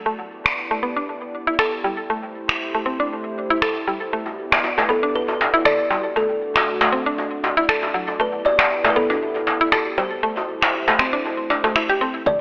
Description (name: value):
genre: afro house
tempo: 118 BPM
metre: 4/4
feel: swing 55% on 16ths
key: A dorian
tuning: A4 = 438 Hz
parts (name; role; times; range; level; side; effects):
- warm analog pad; sustained chords; 0.0-12.4 s; A3 to D5; -29 LUFS; equal; chorus, sidechain pumping
- mallet-like synth pluck; arpeggios; 0.1-12.3 s; F#3 to A4; -22 LUFS; equal; chorus, sidechain pumping, digital delay
- afro-pop drum kit; drums; 0.5-12.4 s; finger snaps, toms; -22 LUFS; equal; small room reverb
- djembe; percussion; 4.3-12.0 s; none; -22 LUFS; equal; none
- kalimba; melody; 4.9-12.4 s; A4 to D5; -22 LUFS; equal; digital delay
- electronic kick drum; drums; 12.3-12.4 s; none; -26 LUFS; equal; small room reverb
room: moderate lush hall reverb, RT60 1.8 s, digital ambience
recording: telephone sound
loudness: -18 LUFS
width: side -27 dB against mid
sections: 0.0-12.3 A section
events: none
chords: 0.1 G6; 2.1 Am7; 4.1 Em7; 6.2 D; 8.2 G6; 10.2 Am7